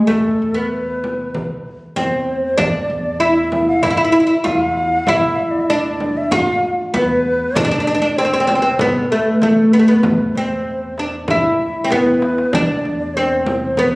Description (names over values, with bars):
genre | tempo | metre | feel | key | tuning
Arabic maqam ensemble | 97 BPM | 4/4 | straight | E maqam hijaz | A4 = 442 Hz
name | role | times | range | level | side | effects
oud | melody | 0.0-14.0 s | A3 to F4+25c | -15 LUFS | equal | none
breathy bright ney | second line | 0.0-14.0 s | G#4 to F5+31c | -21 LUFS | left 1 dB | none
upright bass | bass | 0.1-13.9 s | E2 | -29 LUFS | equal | none
frame drum | percussion | 0.1-13.9 s | none | -24 LUFS | equal | none
darbuka | percussion | 2.6-12.5 s | none | -33 LUFS | equal | none
room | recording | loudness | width
wet recital hall reverb, RT60 1.5 s | recorded on a phone in the room, club reverb | -14 LUFS | side -24 dB against mid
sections
0.0-12.5 A section; 12.5-14.0 A section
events
drum fill 11.9-12.5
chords
none